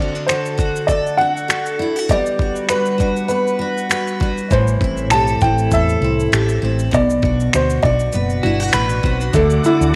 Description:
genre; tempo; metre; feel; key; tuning
acoustic pop; 99 BPM; 4/4; swing 55% on 16ths; D mixolydian; A4 = 441 Hz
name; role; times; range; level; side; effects
dark upright piano; melody; 0.0-10.0 s; A3 to A5; -21 LUFS; equal; none
picked steel-string acoustic guitar; accompaniment; 0.0-10.0 s; A2 to B4; -23 LUFS; equal; double-tracked
nylon-string guitar; arpeggios; 0.0-10.0 s; E3 to G4; -30 LUFS; equal; none
dusty soul sampler-style drum kit; drums; 0.2-9.9 s; finger snaps, kick drum, shaker; -23 LUFS; equal; overdrive
woody fretless electric bass; bass; 4.5-9.9 s; F#1 to E2; -22 LUFS; equal; tube saturation
clean electric guitar; second line; 8.4-9.3 s; F#4 to B4; -26 LUFS; equal; none
bright tonewheel organ; sustained chords; 9.3-10.0 s; A4 to D6; -28 LUFS; equal; overdrive, chorus vibrato, slow rotary speaker
room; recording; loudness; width
light reverb, digital ambience; none; -17 LUFS; mono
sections
0.0-9.3 A section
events
none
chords
0.0 D; 2.1 Gmaj7; 4.5 Am7; 6.9 Bm; 9.3 D

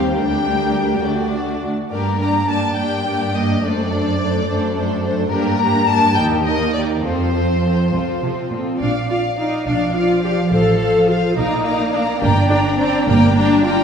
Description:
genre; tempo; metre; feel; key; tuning
quick classical-period movement for string orchestra; 70 BPM (dotted quarters); 6/8; straight; G minor, Bb major from 5.3 s; A4 = 440 Hz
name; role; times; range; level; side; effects
rich chamber violin section; second line; 0.0-13.8 s; F4 to G5; -24 LUFS; left 1 dB; none
rich studio viola section; accompaniment; 0.0-13.8 s; F3 to A4; -19 LUFS; equal; none
rich studio cello section; bass; 0.0-13.8 s; C2 to D4; -21 LUFS; right 2 dB; none
rich chamber violin section; melody; 0.2-13.8 s; Bb4 to Bb5; -22 LUFS; left 3 dB; none
rich chamber double bass section; bass; 8.8-13.8 s; G1 to Bb1; -21 LUFS; right 3 dB; none
room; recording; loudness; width
wet scoring stage reverb, RT60 1.9 s; heard from further back in the room; -15 LUFS; side -7 dB against mid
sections
0.0-8.8 A section; 8.8-13.8 B section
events
none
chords
0.2 Gm/D; 1.0 D; 1.9 Gm; 3.6 D7/F#; 5.3 Gm; 6.2 Eb; 7.0 F; 8.8 Bb; 10.5 F/A; 11.4 Bb; 12.2 Gm

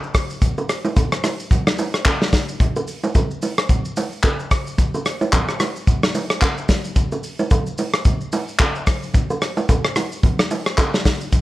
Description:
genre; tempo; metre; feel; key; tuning
amapiano; 110 BPM; 4/4; swing 58% on 16ths; none; none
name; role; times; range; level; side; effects
natural country drum kit; drums; 0.0-11.4 s; handclaps, hi-hat, kick drum, rim click, shaker, snare drum; -18 LUFS; equal; none
congas and bongos; percussion; 0.4-11.4 s; none; -23 LUFS; right 2 dB; none
room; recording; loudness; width
light reverb, studio ambience; worn, warbling old tape, cassette tape, warbly pitch drift; -17 LUFS; side -17 dB against mid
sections
0.0-11.4 A section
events
none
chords
none

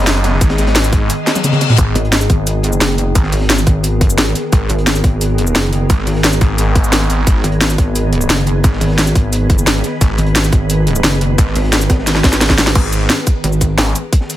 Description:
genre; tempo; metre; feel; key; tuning
dark technical drum and bass; 175 BPM; 4/4; straight; G# minor; A4 = 440 Hz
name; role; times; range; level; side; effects
swarming drone; sustained chords; 0.0-14.4 s; D#3 to D#5; -20 LUFS; equal; built-in reverb, sidechain pumping
snarling distorted saw bass; bass; 0.0-13.9 s; F#1 to G#1; -16 LUFS; equal; distortion, sidechain pumping
crunchy breakbeat drum kit; drums; 0.0-14.4 s; hi-hat, snare drum; -26 LUFS; equal; none
drum and bass drum kit; drums; 0.1-14.4 s; crash cymbal, hi-hat, shaker, snare drum, toms; -15 LUFS; equal; overdrive
electronic kick drum; drums; 0.4-14.2 s; none; -12 LUFS; equal; overdrive
reverse cymbal; sound effects; 1.2-1.8 s; none; -21 LUFS; left 7 dB; none
pulsing pluck wobble bass; bass; 2.0-13.8 s; F#1 to G#1; -15 LUFS; equal; chorus
room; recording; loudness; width
little or no reverb; none; -11 LUFS; side -14 dB against mid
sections
0.0-12.8 A section; 12.8-14.4 A section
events
drop 0.0-12.8, 12.8-14.4; reverse cymbal 1.2-1.8; drum fill 1.3-1.8, 12.1-12.8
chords
0.0 G#madd9

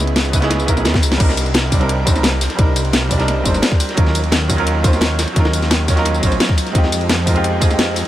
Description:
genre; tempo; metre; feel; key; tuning
liquid drum and bass; 173 BPM; 4/4; straight; C minor; A4 = 440 Hz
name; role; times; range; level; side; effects
bright baby grand piano; accompaniment; 0.0-8.1 s; Gb3 to D5; -20 LUFS; right 2 dB; ping-pong delay
swelling detuned saw bass; bass; 0.0-8.0 s; G1 to F2; -19 LUFS; equal; none
garage drum kit; drums; 0.1-8.1 s; crash cymbal, hi-hat, ride cymbal, snare drum, tambourine; -19 LUFS; left 1 dB; none
crunchy breakbeat drum kit; drums; 0.2-8.1 s; ride cymbal, snare drum; -26 LUFS; equal; none
electronic kick drum; drums; 0.3-7.7 s; none; -16 LUFS; equal; none
room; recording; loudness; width
little or no reverb; none; -13 LUFS; side -13 dB against mid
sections
0.0-1.2 A section; 1.2-8.1 A section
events
drop 0.0-1.2, 1.2-8.1; drum fill 0.9-1.2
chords
0.0 Dbm7; 1.2 Cm7; 4.0 Ebm7; 6.8 Fm7

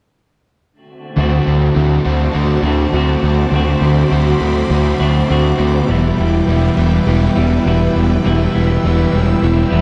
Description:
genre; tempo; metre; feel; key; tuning
rock; 102 BPM; 4/4; straight; D mixolydian; A4 = 440 Hz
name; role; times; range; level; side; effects
string machine, violins; sustained chords; 1.2-9.8 s; E4 to E6; -26 LUFS; equal; ensemble chorus
crunchy overdriven guitar; riff; 1.2-9.8 s; E2 to F#4; -21 LUFS; equal; reverse reverb
overdriven semi-hollow guitar; riff; 1.2-9.8 s; D3 to F#4; -20 LUFS; equal; subtle chorus
growling picked electric bass; bass; 1.2-9.8 s; E1 to D2; -18 LUFS; equal; overdrive
room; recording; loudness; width
light reverb; dark, warm production; -14 LUFS; mono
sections
1.2-9.8 A section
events
none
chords
1.2 D7; 5.9 Em7

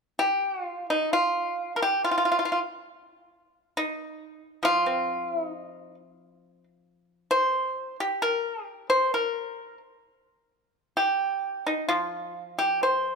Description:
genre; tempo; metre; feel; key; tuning
chinese traditional, Chinese solo plucked strings; 61-70 BPM; 4/4; rubato; unclear; A4 = 440 Hz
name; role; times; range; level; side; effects
pipa; solo; 0.2-13.2 s; F3 to C5; -24 LUFS; equal; none
room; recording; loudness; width
light reverb; close, detailed microphones; -24 LUFS; side -4 dB against mid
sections
0.0-13.2 A section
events
none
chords
none

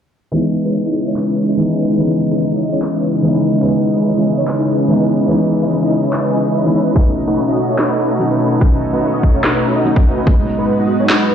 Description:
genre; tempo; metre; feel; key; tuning
future bass; 145 BPM; 4/4; half-time; C# minor; A4 = 440 Hz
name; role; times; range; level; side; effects
felt-muted upright piano; accompaniment; 0.3-11.3 s; E3 to E4; -18 LUFS; equal; sidechain pumping, low-pass filter, tape echo
airy breathy pad; sustained chords; 0.6-11.3 s; G#2 to D#4; -22 LUFS; left 1 dB; chorus, sidechain pumping
supersaw chords; riff; 0.3-11.3 s; G#3 to D#5; -17 LUFS; equal; ensemble chorus, sidechain pumping, low-pass filter, tape echo
electronic handclaps and snare drum; drums; 1.2-11.2 s; none; -19 LUFS; equal; overdrive, low-pass filter on snare
electronic kick drum; drums; 7.0-10.4 s; none; -12 LUFS; equal; overdrive
room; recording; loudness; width
moderate lush hall reverb, RT60 1.6 s; played on a big sound system in a bare room, large studio reverb, low-pass filter; -13 LUFS; side -8 dB against mid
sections
0.3-11.3 A section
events
filter sweep on drum 0.3-11.3; filter sweep on felt piano 0.3-11.3; filter sweep 0.3-11.3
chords
0.3 C#m9; 7.0 B9; 10.3 G#m7

